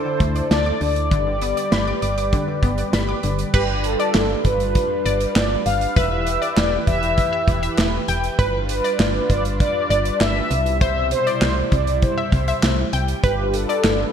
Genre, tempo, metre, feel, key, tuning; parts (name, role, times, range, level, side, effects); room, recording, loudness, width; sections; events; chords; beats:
synth-pop; 99 BPM; 4/4; straight; A4 = 442 Hz
mellow synth brass; melody; 0.0-14.1 s; G4 to F5; -23 LUFS; equal; chorus, ping-pong delay
warm analog pad; sustained chords; 0.0-14.1 s; B2 to D5; -27 LUFS; right 1 dB; chorus
analog pluck; arpeggios; 0.0-3.4 s; D3 to D6; -28 LUFS; left 3 dB; chorus, ping-pong delay
solid FM bass; bass; 0.2-14.1 s; E1 to D2; -23 LUFS; equal
modern studio drum kit; drums; 0.2-14.0 s; crash cymbal, handclaps, hi-hat, kick drum, snare drum; -22 LUFS; right 1 dB; gated reverb
analog pluck; second line; 3.5-14.1 s; B4 to G5; -26 LUFS; left 3 dB; chorus, ping-pong delay
moderate lush hall reverb, RT60 1.9 s, studio ambience; bright 1980s-style digital production; -17 LUFS; side -8 dB against mid
0.0-3.5 A section; 3.5-14.1 B section
0.0 Dsus2; 1.1 G; 3.5 G7; 6.0 Em; 8.4 G7; 10.5 Cmaj7; 13.2 G7
0.51 | 1.11 1.72 2.33 2.93 | 3.54 4.15 4.75 5.36 | 5.96 6.57 7.18 7.78 | 8.39 8.99 9.60 10.21 | 10.81 11.42 12.02 12.63 | 13.24 13.84